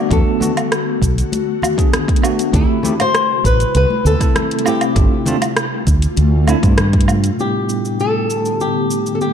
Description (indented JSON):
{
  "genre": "sunset chillout",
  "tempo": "99 BPM",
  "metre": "4/4",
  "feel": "straight",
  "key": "unclear",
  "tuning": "A4 = 443 Hz",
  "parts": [
    { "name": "flamenco guitar", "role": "melody", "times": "0.0-9.3 s", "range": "E4 to D5", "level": "-20 LUFS", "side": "left 2 dB", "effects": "ping-pong delay" },
    { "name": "barky tine electric piano", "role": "accompaniment", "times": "0.0-9.3 s", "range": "A2 to A4", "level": "-21 LUFS", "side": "right 1 dB", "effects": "medium stereo tremolo, auto-pan, low-pass filter, ping-pong delay" },
    { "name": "ethereal airy pad", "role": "sustained chords", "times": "0.0-9.3 s", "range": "C3 to G4", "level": "-22 LUFS", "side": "left 2 dB", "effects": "ensemble chorus, built-in reverb" },
    { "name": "fretless electric bass", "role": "bass", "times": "0.1-7.3 s", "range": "G1 to G2", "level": "-14 LUFS", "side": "equal", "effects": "lush chorus" },
    { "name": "deep house drum kit", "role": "drums", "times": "0.1-9.3 s", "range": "cabasa, hi-hat, rim click, woodblock", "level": "-22 LUFS", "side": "right 2 dB", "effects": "overdrive" },
    { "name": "electronic kick drum", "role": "drums", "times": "0.1-7.0 s", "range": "none", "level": "-16 LUFS", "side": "equal", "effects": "overdrive" },
    { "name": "congas", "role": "percussion", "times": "0.4-7.2 s", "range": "none", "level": "-25 LUFS", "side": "left 2 dB", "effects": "none" }
  ],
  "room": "light reverb",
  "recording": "dark, warm production",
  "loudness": "-13 LUFS",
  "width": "side -8 dB against mid",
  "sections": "0.0-7.4 A section; 7.4-9.3 B section",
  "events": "filter sweep on tine electric piano 0.0-7.4, 7.4-9.3; filter sweep on ambient pad 7.4-9.3",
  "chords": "0.0 E9sus4 (rootless); 2.5 D9sus4 (rootless); 5.0 G9sus4; 7.4 A9sus4"
}